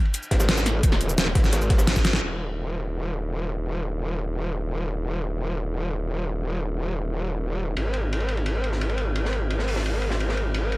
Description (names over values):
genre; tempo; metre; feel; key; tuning
dark technical drum and bass; 173 BPM; 4/4; straight; unclear; A4 = 440 Hz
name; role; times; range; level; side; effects
crunchy breakbeat drum kit; drums; 0.1-2.1, 7.8-10.8 s; hi-hat, ride cymbal, snare drum; -31 LUFS; equal; high-pass filter on cymbals, high-pass filter on hats, high-pass filter on snare, high-pass filter on room
dubstep drum kit; drums; 0.1-2.3 s; crash cymbal, hi-hat, shaker, snare drum; -24 LUFS; equal; overdrive, low-pass filter on hats, low-pass filter on perc, low-pass filter on snare, low-pass filter on cymbals, low-pass filter on room
growl bass; bass; 0.3-10.8 s; Eb1 to Ab1; -25 LUFS; equal; chorus
electronic kick drum; drums; 0.3-2.0 s; none; -21 LUFS; equal; overdrive
room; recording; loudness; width
little or no reverb; none; -23 LUFS; side -21 dB against mid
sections
0.0-2.2 A section; 2.2-10.8 B section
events
drop 0.0-2.2; drum fill 2.0; band accent 2.1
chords
none